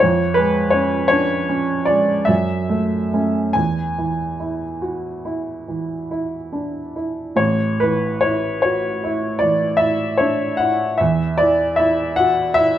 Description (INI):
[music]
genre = classical, romantic nocturne for solo piano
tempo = 45-57 BPM (dotted quarters)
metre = 9/8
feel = rubato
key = A major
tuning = A4 = 436 Hz
[part]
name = warm upright piano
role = solo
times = 0.0-12.8 s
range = A1 to G#5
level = -17 LUFS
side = equal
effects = none
[sound]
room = moderate large studio reverb, RT60 1.0 s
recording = none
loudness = -17 LUFS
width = side -11 dB against mid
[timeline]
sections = 0.0-12.8 A section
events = none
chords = 0.0 C#/E#; 2.3 F#m7; 3.6 E; 7.4 A; 11.0 N.C.